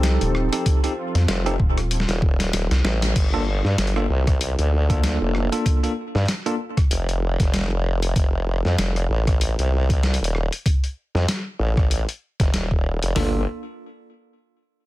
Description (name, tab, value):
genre	glitch hop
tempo	96 BPM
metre	4/4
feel	swing 57% on 16ths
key	G minor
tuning	A4 = 442 Hz
part	warm analog pad	sustained chords	0.0-3.1 s	F3 to A4	-32 LUFS	right 2 dB	chorus, sidechain pumping
part	bell-like tine electric piano	stabs	0.0-6.5, 13.2-13.4 s	Bb3 to A4	-26 LUFS	equal	auto-pan, sidechain pumping, digital delay
part	rubbery square bass	bass	0.0-2.8 s	Eb1 to F2	-20 LUFS	equal	none
part	boom bap sampler-style drum kit	drums	0.0-13.1 s	crash cymbal, hi-hat, rim click, snare drum	-26 LUFS	left 1 dB	none
part	boom bap sampler-style drum kit	drums	0.7-13.3 s	hi-hat, kick drum, snare drum, toms	-20 LUFS	equal	none
part	formant-sweep wobble bass	bass	1.3-13.5 s	Eb1 to G2	-21 LUFS	equal	chorus, tube saturation
room	light reverb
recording	dense, heavily limited modern master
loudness	-19 LUFS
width	side -17 dB against mid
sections	0.0-3.2 A section; 3.2-13.2 B section; 13.2-14.9 C section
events	drop 0.0-3.2; drum fill 1.9-3.2; band accent 3.0-3.3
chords	0.0 F7; 3.2 Gm7; 8.2 F7; 13.2 Gm7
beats	0.03 | 0.66 1.28 1.91 2.53 | 3.16 3.78 4.41 5.03 | 5.66 6.28 6.91 7.53 | 8.16 8.78 9.41 10.03 | 10.66 11.28 11.91 12.53 | 13.16